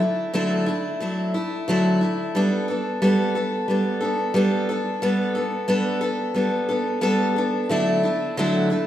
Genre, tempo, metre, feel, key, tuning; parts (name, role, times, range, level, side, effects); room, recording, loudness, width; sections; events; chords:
rock; 90 BPM; 4/4; straight; G major; A4 = 439 Hz
picked steel-string acoustic guitar; solo; 0.0-8.9 s; D3 to A4; -20 LUFS; equal
wet recital hall reverb, RT60 1.5 s; recorded in a church or concert hall; -20 LUFS; side -12 dB against mid
0.0-8.9 A section
0.0 Dadd9; 2.4 Gadd9; 7.7 Dadd9